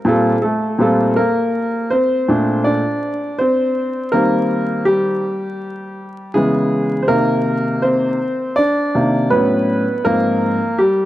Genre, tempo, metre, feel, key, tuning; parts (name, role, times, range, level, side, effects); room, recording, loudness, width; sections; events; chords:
hip hop; 81 BPM; 4/4; swing 60% on 16ths; Bb major; A4 = 435 Hz
warm grand piano; solo; 0.0-11.1 s; Ab2 to D5; -15 LUFS; equal
moderate plate reverb, RT60 3.0 s; vinyl crackle; -14 LUFS; side -14 dB against mid
0.0-1.2 A section; 1.2-11.1 B section
grand piano solo 1.2-11.1
0.4 Bb5; 1.2 Bbmaj9; 4.1 Eb6; 6.4 Dbm7; 7.1 Cm9; 9.3 A69; 10.1 Ab69